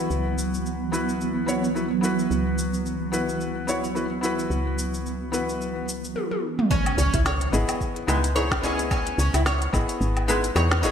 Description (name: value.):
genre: organic downtempo.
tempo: 109 BPM.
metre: 4/4.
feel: swing 57% on 16ths.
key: C# minor.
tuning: A4 = 440 Hz.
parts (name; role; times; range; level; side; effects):
felt-muted upright piano; accompaniment; 0.0-10.9 s; B3 to D#5; -28 LUFS; left 2 dB; sidechain pumping, ping-pong delay.
granular cloud pad; sustained chords; 0.0-6.1 s; E3 to B3; -28 LUFS; right 2 dB; built-in reverb, sidechain pumping.
woody FM bass; bass; 0.0-10.9 s; G#1 to E2; -27 LUFS; equal; tube saturation.
organic electronic drum kit; drums; 0.1-10.9 s; hi-hat, shaker, snare drum, toms, woodblock; -29 LUFS; equal; gated reverb.
oud; arpeggios; 6.7-10.9 s; G#3 to C#5; -27 LUFS; right 1 dB; ping-pong delay.
electronic kick drum; drums; 6.7-9.9 s; none; -27 LUFS; equal; none.
impact; sound effects; 6.7-8.9 s; none; -33 LUFS; equal; none.
room: moderate lush hall reverb, RT60 1.7 s.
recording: bright 1980s-style digital production, lossy compression artefacts.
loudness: -22 LUFS.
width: side -8 dB against mid.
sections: 0.0-6.7 A section; 6.7-10.9 B section.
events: drum fill 6.2-6.7; impact 6.7-8.9.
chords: 0.0 Bsus4/C#; 6.7 C#m7.